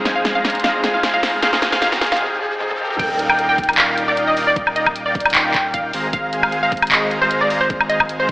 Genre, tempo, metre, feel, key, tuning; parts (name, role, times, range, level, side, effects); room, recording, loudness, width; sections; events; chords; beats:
future bass; 153 BPM; 4/4; swing 53% on 16ths, half-time; Eb major; A4 = 441 Hz
wide unison pluck; melody; 0.0-8.3 s; C5 to G5; -19 LUFS; equal; vintage 12-bit sampler grit, sidechain pumping, tape echo
bright concert grand piano; accompaniment; 0.0-3.0 s; F3 to Ab4; -26 LUFS; left 1 dB; sidechain pumping, tape echo
bright studio string section; sustained chords; 0.0-2.2 s; F3 to Ab4; -33 LUFS; left 1 dB
dense compressed supersaw; riff; 0.0-8.3 s; Ab3 to Bb5; -22 LUFS; equal; sidechain pumping
riser; sound effects; 0.0-3.0 s; -28 LUFS; equal
big-room dance drum kit; drums; 0.1-8.3 s; crash cymbal, handclaps, hi-hat, snare drum, toms, woodblock; -18 LUFS; equal; small room ambience
saturated sub bass; bass; 3.0-8.3 s; Eb1 to Ab1; -31 LUFS; equal; sidechain pumping
electronic kick drum; drums; 3.0-8.3 s; -28 LUFS; equal; overdrive, small room ambience
wet lush hall reverb, RT60 1.6 s, digital ambience; high-pass filter, AM radio sound; -15 LUFS; side -20 dB against mid
0.0-3.0 A section; 3.0-8.3 B section
build-up 0.0-3.0; drum fill 0.0-2.2, 2.6-3.0; riser 0.0-3.0; break 2.2-3.0; drop 3.0-8.3
0.0 Ab6; 2.8 Eb; 3.0 Ebmaj7; 5.9 Ab6
0.25 0.64 1.03 | 1.43 1.82 2.21 2.60 | 2.99 3.39 3.78 4.17 | 4.56 4.96 5.35 5.74 | 6.13 6.52 6.92 7.31 | 7.70 8.09